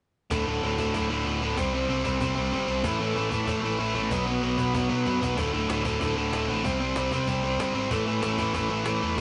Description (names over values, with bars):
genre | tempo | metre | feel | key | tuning
punk rock | 190 BPM | 4/4 | straight | D mixolydian | A4 = 440 Hz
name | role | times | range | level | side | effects
biting overdriven guitar | riff | 0.3-9.2 s | D2 to C4 | -31 LUFS | equal | none
overdriven electric guitar | riff | 0.3-9.2 s | D2 to C4 | -31 LUFS | equal | none
overdriven picked electric bass | bass | 0.3-9.2 s | D1 to B2 | -35 LUFS | equal | none
cajon | drums | 0.3-9.2 s | none | -37 LUFS | equal | none
room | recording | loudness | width
moderate small room ambience, RT60 0.5 s | rough rehearsal-room recording, nothing above 10.6 kHz | -27 LUFS | mono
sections
0.3-9.2 A section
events
drum fill 5.1-5.4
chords
0.3 D5; 1.6 C5; 2.8 A5; 4.1 B5; 5.4 D5; 6.6 C5; 7.9 A5